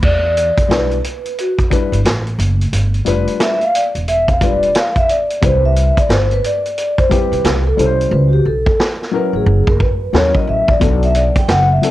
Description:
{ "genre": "hip hop, jazz-hop", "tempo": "89 BPM", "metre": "4/4", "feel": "swing 62% on 16ths", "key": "E minor", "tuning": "A4 = 440 Hz", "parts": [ { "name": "vibraphone with soft mallets", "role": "melody", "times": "0.0-11.9 s", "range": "F#4 to G5", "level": "-16 LUFS", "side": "equal", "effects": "cassette tape, plate reverb" }, { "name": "upright bass", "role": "bass", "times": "0.0-11.8 s", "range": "E1 to F#2", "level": "-16 LUFS", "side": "right 1 dB", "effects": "none" }, { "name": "vintage drum kit", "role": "drums", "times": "0.0-11.9 s", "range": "crash cymbal, hi-hat, kick drum, snare drum", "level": "-17 LUFS", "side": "equal", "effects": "cassette tape" }, { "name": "dark baby grand piano", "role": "accompaniment", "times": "0.7-11.9 s", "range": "F#3 to C5", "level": "-20 LUFS", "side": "left 7 dB", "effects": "plate reverb" } ], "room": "light reverb", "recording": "home recording on cassette", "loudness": "-12 LUFS", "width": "side -15 dB against mid", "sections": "0.0-11.9 A section", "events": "vibraphone solo 0.0-11.9; hi-hats muted 8.1-10.8", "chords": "0.0 Em7; 2.7 G7; 5.4 Cmaj7; 8.1 C#m7; 9.5 F#7; 10.8 Bm7", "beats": "| 0.03 0.71 1.38 2.05 | 2.73 3.40 4.08 4.75 | 5.42 6.10 6.77 7.45 | 8.12 8.79 9.47 10.14 | 10.82 11.49" }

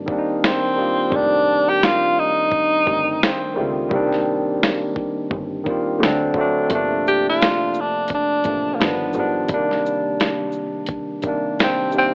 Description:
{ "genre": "lo-fi hip hop", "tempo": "86 BPM", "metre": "4/4", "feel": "swing 56% on 16ths", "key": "unclear", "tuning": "A4 = 439 Hz", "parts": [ { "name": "barky tine electric piano", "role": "accompaniment", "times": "0.0-12.1 s", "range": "C3 to F4", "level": "-24 LUFS", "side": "equal", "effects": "cassette tape, low-pass filter" }, { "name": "clear double bass", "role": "bass", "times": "0.0-9.5 s", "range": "F1 to D2", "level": "-33 LUFS", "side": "equal", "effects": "none" }, { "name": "dusty soul sampler-style drum kit", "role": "drums", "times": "0.1-12.1 s", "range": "hi-hat, kick drum, shaker, snare drum", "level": "-24 LUFS", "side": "equal", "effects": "overdrive" }, { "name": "breathy tenor saxophone", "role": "melody", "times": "0.5-12.1 s", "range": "Bb3 to G4", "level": "-21 LUFS", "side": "equal", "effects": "low-pass filter" } ], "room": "moderate plate reverb, RT60 2.1 s", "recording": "cassette tape, AM radio sound", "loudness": "-20 LUFS", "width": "mono", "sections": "0.0-12.1 A section", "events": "break 0.0-6.7", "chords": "0.0 Cm7; 1.1 F13; 3.9 Cm7; 6.0 D7; 6.7 Gm11; 8.8 G7b13; 9.5 Cm7", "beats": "0.42 | 1.12 1.82 2.51 3.21 | 3.91 4.61 5.30 6.00 | 6.70 7.40 8.10 8.79 | 9.49 10.19 10.89 11.58" }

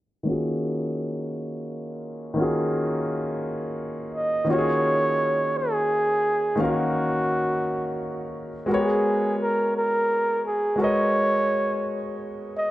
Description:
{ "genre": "R&B", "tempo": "57 BPM (dotted quarters)", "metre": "6/8", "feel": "straight", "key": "Eb minor", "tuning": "A4 = 440 Hz", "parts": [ { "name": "clear grand piano", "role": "accompaniment", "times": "0.2-12.7 s", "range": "Eb3 to F5", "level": "-26 LUFS", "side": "equal", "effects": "none" }, { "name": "breathy flugelhorn", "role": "melody", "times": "4.1-12.7 s", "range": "Gb4 to Eb5", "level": "-23 LUFS", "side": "right 1 dB", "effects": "none" } ], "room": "moderate plate reverb, RT60 3.4 s", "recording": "dark, warm production, low-pass filter, nothing above 10.3 kHz", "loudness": "-22 LUFS", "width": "side -15 dB against mid", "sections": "0.3-4.5 A section; 4.5-12.7 B section", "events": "filter sweep 0.3-4.5", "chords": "0.3 Ebm11; 8.7 Abm11", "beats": "| 0.27 1.32 | 2.37 3.42 | 4.48 5.53 | 6.58 7.63 | 8.69 9.74 | 10.79 11.85" }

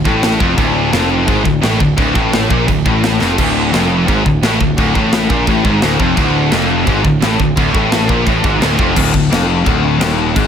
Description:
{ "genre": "heavy metal", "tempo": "172 BPM", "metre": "4/4", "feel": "straight", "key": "unclear", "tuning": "A4 = 440 Hz", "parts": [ { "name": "scooped high-gain guitar", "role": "riff", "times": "0.0-10.5 s", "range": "D2 to Bb2", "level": "-17 LUFS", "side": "left 9 dB", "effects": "distortion" }, { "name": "scooped high-gain guitar", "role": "riff", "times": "0.0-9.0 s", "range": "D2 to Bb2", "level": "-18 LUFS", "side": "right 11 dB", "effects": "distortion" }, { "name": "fuzz picked electric bass", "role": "bass", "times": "0.0-10.5 s", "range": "D1 to Bb1", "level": "-18 LUFS", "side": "right 1 dB", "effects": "overdrive" }, { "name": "biting overdriven guitar", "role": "riff", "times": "0.1-10.5 s", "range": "D2 to Bb2", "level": "-18 LUFS", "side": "left 1 dB", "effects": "none" }, { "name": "tight metal drum kit", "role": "drums", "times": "0.1-10.4 s", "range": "china cymbal, crash cymbal, kick drum, snare drum", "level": "-17 LUFS", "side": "equal", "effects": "none" } ], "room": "light reverb", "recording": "none", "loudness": "-11 LUFS", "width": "side -8 dB against mid", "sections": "0.0-9.0 A section; 9.0-10.5 B section", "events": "drum fill 3.2", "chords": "0.0 Dm", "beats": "0.23 | 0.58 0.93 1.28 1.63 | 1.98 2.33 2.68 3.03 | 3.38 3.73 4.08 4.43 | 4.78 5.12 5.47 5.82 | 6.17 6.52 6.87 7.22 | 7.57 7.92 8.26 8.61 | 8.96 9.31 9.66 10.00 | 10.35" }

